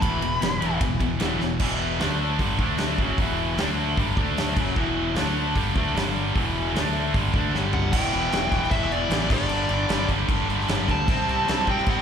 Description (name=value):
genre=hard rock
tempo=152 BPM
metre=4/4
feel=straight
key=E minor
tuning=A4 = 440 Hz
part: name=dark smooth lead guitar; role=melody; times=0.0-0.8, 7.7-12.0 s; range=D5 to B5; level=-28 LUFS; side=left 1 dB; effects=overdrive, plate reverb, slapback echo
part: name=high-gain distorted guitar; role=riff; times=0.0-12.0 s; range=E2 to D4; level=-30 LUFS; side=right 1 dB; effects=distortion
part: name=overdriven electric guitar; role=riff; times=0.0-12.0 s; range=E2 to D4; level=-29 LUFS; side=left 11 dB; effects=slapback echo
part: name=scooped high-gain guitar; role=riff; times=0.0-12.0 s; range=E2 to D4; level=-29 LUFS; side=right 13 dB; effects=distortion
part: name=modern bright fingered electric bass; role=bass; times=0.0-12.0 s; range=E1 to E2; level=-29 LUFS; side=equal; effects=none
part: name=huge arena drum kit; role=drums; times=0.0-12.0 s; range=crash cymbal, hi-hat, kick drum, ride cymbal, snare drum, toms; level=-26 LUFS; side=equal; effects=none
room=light reverb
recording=live gig heard through the venue's PA, club reverb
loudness=-21 LUFS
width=side -8 dB against mid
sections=0.0-1.6 A section; 1.6-7.9 B section; 7.9-12.0 C section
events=lead electric guitar solo 0.0-1.6; drum fill 1.4, 7.5-7.9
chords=0.0 E5; 2.0 D5; 2.4 G5; 2.6 D5; 3.0 E5; 3.6 D5; 4.0 G5; 4.2 D5; 4.6 E5; 5.2 D5; 5.6 Gsus2; 6.0 G5; 6.4 E5; 6.8 D5; 7.1 Gsus2; 7.5 G5; 7.9 Em; 9.3 G5; 11.1 C5